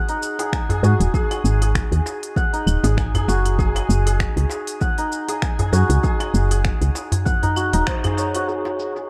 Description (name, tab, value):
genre	organic downtempo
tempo	98 BPM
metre	4/4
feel	swing 55% on 16ths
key	unclear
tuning	A4 = 438 Hz
part	santur	arpeggios	0.0-9.1 s	D#4 to G#5	-26 LUFS	equal	low-pass filter, analog delay
part	organic electronic drum kit	drums	0.1-9.1 s	claves, finger snaps, hi-hat, shaker	-32 LUFS	equal	low-pass filter on perc, studio reverb, low-pass filter on hats, low-pass filter on snare, analog delay
part	darbuka	percussion	0.4-8.9 s	none	-29 LUFS	equal	analog delay
part	electronic kick drum	drums	0.5-8.0 s	none	-25 LUFS	equal	overdrive, studio reverb
part	woody FM bass	bass	0.8-7.8 s	D#1 to G#2	-20 LUFS	equal	sidechain pumping
room	light reverb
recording	echo-heavy mix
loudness	-20 LUFS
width	mono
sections	0.0-8.5 A section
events	band accent 7.9-8.2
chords	0.0 G#5; 3.6 F#5; 8.5 G#5